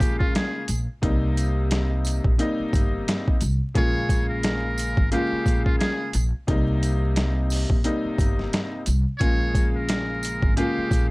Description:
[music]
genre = hip hop, boom-bap hip-hop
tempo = 88 BPM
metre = 4/4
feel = swing 59% on 16ths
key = Bb dorian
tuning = A4 = 440 Hz
[part]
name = trumpet with metal mute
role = melody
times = 0.0-11.1 s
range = F4 to Db5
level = -29 LUFS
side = right 1 dB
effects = high-pass filter, low-pass filter, slapback echo
[part]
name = bright upright piano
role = accompaniment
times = 0.0-11.1 s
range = C3 to F4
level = -27 LUFS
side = left 1 dB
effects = high-pass filter, low-pass filter
[part]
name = upright bass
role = bass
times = 0.0-11.1 s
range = G1 to C2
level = -25 LUFS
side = equal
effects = none
[part]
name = boom bap sampler-style drum kit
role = drums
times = 0.0-11.1 s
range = hi-hat, kick drum, snare drum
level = -23 LUFS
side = equal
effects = overdrive, vintage 12-bit sampler grit
[part]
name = tambourine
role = percussion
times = 0.0-11.1 s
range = none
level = -38 LUFS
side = right 4 dB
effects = none
[sound]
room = little or no reverb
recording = vinyl crackle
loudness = -20 LUFS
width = side -23 dB against mid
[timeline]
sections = 0.0-11.1 A section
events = none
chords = 0.0 Bbm7; 1.0 Cm7; 3.8 Bbm7; 6.5 Cm7; 9.2 Bbm7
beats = 0.34 | 1.03 1.71 2.39 3.07 | 3.75 4.44 5.12 5.80 | 6.48 7.16 7.84 8.53 | 9.21 9.89 10.57

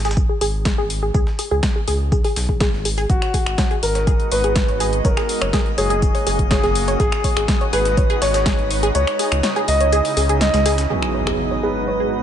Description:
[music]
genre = progressive house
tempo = 123 BPM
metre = 4/4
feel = straight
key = G# minor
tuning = A4 = 440 Hz
[part]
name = wide unison pluck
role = arpeggios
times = 0.0-12.1 s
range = G#3 to C#5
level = -24 LUFS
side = equal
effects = sidechain pumping, ping-pong delay
[part]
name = round analog bass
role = bass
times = 0.0-10.9 s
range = F#1 to C#2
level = -22 LUFS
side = equal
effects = sidechain pumping
[part]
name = breakbeat sampler-style drum kit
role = drums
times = 0.0-10.9 s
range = hi-hat, snare drum, tambourine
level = -33 LUFS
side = equal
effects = none
[part]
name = electronic kick drum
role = drums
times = 0.2-8.6 s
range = none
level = -19 LUFS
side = equal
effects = overdrive
[part]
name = deep house drum kit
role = drums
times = 0.4-11.4 s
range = finger snaps, hi-hat, snare drum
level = -25 LUFS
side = left 1 dB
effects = overdrive
[part]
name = dark baby grand piano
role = melody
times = 3.1-10.9 s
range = F#4 to D#5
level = -22 LUFS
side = equal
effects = sidechain pumping, ping-pong delay
[part]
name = shimmering ambient pad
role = sustained chords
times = 3.9-12.2 s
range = G#2 to B4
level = -27 LUFS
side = equal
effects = chorus, built-in reverb, sidechain pumping
[part]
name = drifting glass-harmonics texture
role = texture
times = 3.6-12.2 s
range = D#5 to D#6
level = -32 LUFS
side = right 1 dB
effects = chorus, built-in reverb, sidechain pumping
[part]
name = soft supersaw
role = stabs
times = 10.9-12.2 s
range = F#3 to B4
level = -22 LUFS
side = right 3 dB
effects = sidechain pumping, low-pass filter, ping-pong delay
[part]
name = impact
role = sound effects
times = 10.9-12.2 s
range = none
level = -27 LUFS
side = equal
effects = none
[sound]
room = light reverb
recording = nothing above 10.5 kHz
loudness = -16 LUFS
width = side -9 dB against mid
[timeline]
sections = 0.0-10.9 A section; 10.9-12.2 B section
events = filter sweep on synth pluck 0.0-10.9; kick drops out 8.9-10.9; impact 10.9-12.2; filter sweep on ambient pad 10.9-12.2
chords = 0.0 N.C.; 1.1 C#5; 3.1 G#m7; 5.0 F#; 7.0 G#m7; 8.9 C#madd9; 10.9 G#m7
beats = 0.17 0.66 | 1.15 1.63 2.12 2.61 | 3.10 3.58 4.07 4.56 | 5.05 5.54 6.02 6.51 | 7.00 7.49 7.97 8.46 | 8.95 9.44 9.93 10.41 | 10.90 11.39 11.88

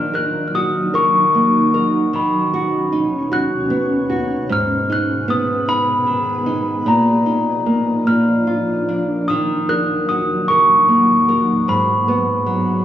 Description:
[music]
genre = children's music, lullaby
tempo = 50 BPM (dotted quarters)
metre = 6/8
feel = rubato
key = Eb minor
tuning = A4 = 440 Hz
[part]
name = glockenspiel with rubber mallets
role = melody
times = 0.0-12.8 s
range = Bb5 to Gb6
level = -18 LUFS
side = left 1 dB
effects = none
[part]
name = nylon-string guitar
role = accompaniment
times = 0.0-12.8 s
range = Ab2 to Bb4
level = -19 LUFS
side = right 1 dB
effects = none
[part]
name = shimmering ambient pad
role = sustained chords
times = 0.0-12.8 s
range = D#2 to Eb4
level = -23 LUFS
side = equal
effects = chorus, built-in reverb
[sound]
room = wet scoring stage reverb, RT60 2.0 s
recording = worn, warbling old tape, cassette tape, warbly pitch drift, small room ambience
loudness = -14 LUFS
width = side -11 dB against mid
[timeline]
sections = 0.0-12.8 A section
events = none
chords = 0.0 Ebm; 2.1 Badd9/D#; 4.5 Abm; 6.9 Bbsus4; 8.1 Bb; 9.3 Ebm; 11.7 Abm7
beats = 0.94 | 2.14 3.32 | 4.50 5.67 | 6.86 8.07 | 9.29 10.49 | 11.68 12.84

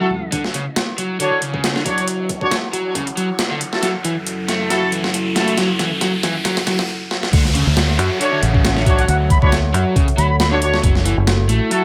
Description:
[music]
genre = breakbeat, breaks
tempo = 137 BPM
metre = 4/4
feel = swing 55% on 16ths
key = unclear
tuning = A4 = 442 Hz
[part]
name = dark analog pad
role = sustained chords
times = 0.0-11.8 s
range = F#3 to F#5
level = -29 LUFS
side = equal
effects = chorus, vintage 12-bit sampler grit, sidechain pumping
[part]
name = crunchy overdriven guitar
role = riff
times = 0.0-11.8 s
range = C#3 to A3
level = -25 LUFS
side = equal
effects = tube saturation, low-pass filter, digital delay
[part]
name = clear brass ensemble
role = stabs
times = 0.0-5.5, 8.2-11.8 s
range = D4 to C#5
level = -24 LUFS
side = equal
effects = vintage 12-bit sampler grit, digital delay
[part]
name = breakbeat sampler-style drum kit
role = drums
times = 0.3-11.8 s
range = hi-hat, kick drum, snare drum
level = -21 LUFS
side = equal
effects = high-pass filter on hats, high-pass filter on kick, high-pass filter on snare, high-pass filter on room
[part]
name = riser and downlifter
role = sound effects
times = 2.0-10.8 s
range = none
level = -30 LUFS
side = equal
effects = none
[part]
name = fingered electric bass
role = bass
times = 7.3-11.6 s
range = F#1 to F#2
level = -20 LUFS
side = equal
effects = none
[part]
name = bright reedy jazz flute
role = melody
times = 9.0-10.5 s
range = F#5 to B5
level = -28 LUFS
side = equal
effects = AM radio sound, digital delay
[sound]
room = moderate studio reverb, RT60 0.6 s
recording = none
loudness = -18 LUFS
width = mono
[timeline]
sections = 0.3-7.3 A section; 7.3-11.8 B section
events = build-up 0.3-7.3; filter sweep on analog synth pad 0.3-7.3; riser 2.0-6.9; drum fill 3.8-6.9, 7.1; stop 6.9-7.3; drop 7.3-11.8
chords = 0.3 Dmaj7; 3.8 F#m7; 7.3 Dmaj7; 10.8 F#m7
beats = | 0.33 0.76 1.20 1.64 | 2.08 2.52 2.95 3.39 | 3.83 4.27 4.71 5.14 | 5.58 6.02 6.46 6.89 | 7.33 7.77 8.21 8.65 | 9.09 9.52 9.96 10.40 | 10.84 11.28 11.71

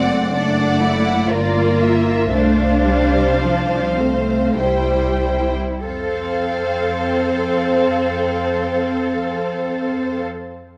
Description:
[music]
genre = classical, slow romantic movement for string orchestra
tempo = 45-64 BPM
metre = 3/4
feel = rubato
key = F major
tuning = A4 = 438 Hz
[part]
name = dark symphonic violin section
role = melody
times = 0.0-10.2 s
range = D5 to G5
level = -28 LUFS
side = equal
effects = none
[part]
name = warm symphonic violin section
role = second line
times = 0.0-10.2 s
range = Bb4 to D5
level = -24 LUFS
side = equal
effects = none
[part]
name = rich symphonic viola section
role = accompaniment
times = 0.0-10.2 s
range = F3 to C4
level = -24 LUFS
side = equal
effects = none
[part]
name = clear symphonic double bass section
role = bass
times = 0.0-10.2 s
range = F#1 to F2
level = -26 LUFS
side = equal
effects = none
[part]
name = rich symphonic cello section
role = bass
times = 0.0-10.2 s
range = C4 to A4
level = -25 LUFS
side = equal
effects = none
[sound]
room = wet scoring stage reverb, RT60 1.6 s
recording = none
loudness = -18 LUFS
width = mono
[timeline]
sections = 0.0-5.9 A section; 5.9-9.5 B section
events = slowing down 0.0-5.9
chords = 0.0 D7/F#; 1.3 Gm7; 2.3 F/C; 4.6 C; 5.9 F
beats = 0.34 1.31 | 2.31 3.39 4.58 | 5.85 7.07 8.30

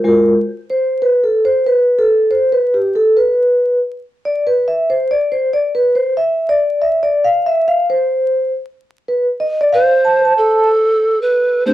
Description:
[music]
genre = hip hop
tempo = 93 BPM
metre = 4/4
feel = swing 63% on 16ths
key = A minor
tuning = A4 = 438 Hz
[part]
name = vibraphone with soft mallets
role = accompaniment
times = 0.0-11.7 s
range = G#3 to A5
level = -12 LUFS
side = equal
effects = cassette tape
[part]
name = polished pan flute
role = melody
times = 9.7-11.7 s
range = A4 to C5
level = -13 LUFS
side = right 1 dB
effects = cassette tape, analog delay
[sound]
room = moderate studio ambience, RT60 0.5 s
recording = home recording on cassette, vinyl crackle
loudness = -12 LUFS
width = side -14 dB against mid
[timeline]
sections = 0.4-10.7 A section; 10.7-11.7 B section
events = vibraphone solo 0.4-10.7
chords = 0.4 N.C.; 10.7 Am11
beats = | 0.37 1.01 1.66 2.31 | 2.95 3.60 4.24 4.89 | 5.53 6.18 6.82 7.47 | 8.11 8.76 9.40 10.05 | 10.69 11.34

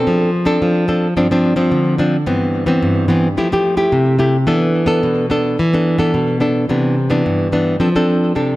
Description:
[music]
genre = samba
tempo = 109 BPM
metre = 4/4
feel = straight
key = unclear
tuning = A4 = 441 Hz
[part]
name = nylon-string guitar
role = solo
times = 0.0-8.6 s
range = G2 to A4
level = -13 LUFS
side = equal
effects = tape echo
[sound]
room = moderate recital hall reverb, RT60 1.6 s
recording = close, detailed microphones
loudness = -13 LUFS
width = side -17 dB against mid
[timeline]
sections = 0.0-6.7 A section; 6.7-8.6 B section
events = none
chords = 0.1 Dm7/F; 1.2 G7sus4; 2.3 Cmaj7/G; 3.4 Fmaj9; 4.5 E7sus4; 6.7 Cmaj9; 7.8 F6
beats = | 0.07 0.63 1.18 1.73 | 2.28 2.83 3.38 3.93 | 4.49 5.04 5.59 6.14 | 6.69 7.24 7.79 8.35

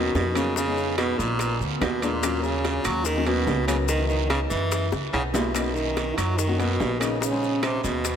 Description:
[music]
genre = Afro-Cuban jazz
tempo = 144 BPM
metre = 4/4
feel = straight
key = unclear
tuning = A4 = 440 Hz
[part]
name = edgy tenor saxophone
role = melody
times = 0.0-8.2 s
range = A#2 to F#3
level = -26 LUFS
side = equal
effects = ping-pong delay
[part]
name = breathy trombone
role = second line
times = 0.0-8.2 s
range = A#3 to F#4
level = -32 LUFS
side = right 7 dB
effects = ping-pong delay
[part]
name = dark baby grand piano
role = accompaniment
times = 0.0-7.9 s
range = E3 to B#4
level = -30 LUFS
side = left 5 dB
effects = none
[part]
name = upright bass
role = bass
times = 0.0-8.2 s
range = A#1 to F#2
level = -28 LUFS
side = equal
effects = none
[part]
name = guiro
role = percussion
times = 0.1-8.2 s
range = none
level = -38 LUFS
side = right 12 dB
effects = none
[part]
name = bongos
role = percussion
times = 0.2-8.2 s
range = none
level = -35 LUFS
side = left 5 dB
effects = none
[part]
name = maracas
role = percussion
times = 0.2-8.2 s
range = none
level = -35 LUFS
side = left 15 dB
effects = none
[part]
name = timbales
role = percussion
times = 0.2-8.2 s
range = none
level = -34 LUFS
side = right 6 dB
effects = none
[part]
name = claves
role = percussion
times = 0.4-7.8 s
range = none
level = -40 LUFS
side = left 8 dB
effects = none
[sound]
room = wet cathedral reverb, RT60 4.4 s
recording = dreamy mix soaked in reverb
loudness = -22 LUFS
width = side -8 dB against mid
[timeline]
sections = 0.0-8.2 A section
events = drum fill 4.9-5.6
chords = 0.0 G#m11 (rootless); 0.6 Fm7b5; 1.4 A#7b9; 2.2 D#m7; 3.9 C#m7; 4.7 F#7; 5.6 Bmaj7; 7.2 A#m7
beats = 0.15 | 0.56 0.98 1.40 1.81 | 2.23 2.65 3.06 3.48 | 3.89 4.31 4.72 5.14 | 5.56 5.97 6.39 6.80 | 7.22 7.63 8.05

